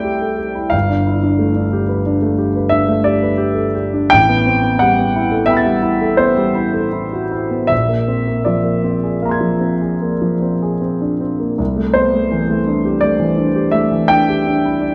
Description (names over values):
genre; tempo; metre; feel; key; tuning
classical, impressionist solo piano; 74-93 BPM; 5/4; rubato; unclear; A4 = 439 Hz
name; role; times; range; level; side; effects
clear grand piano; solo; 0.0-14.9 s; G1 to A6; -16 LUFS; equal; none
room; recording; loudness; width
moderate recital hall reverb, RT60 1.5 s; dark, warm production, nothing above 10.4 kHz; -16 LUFS; mono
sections
0.0-14.9 A section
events
none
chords
0.0 C69; 0.7 G9; 4.1 Am9; 7.7 Bb9; 11.6 C69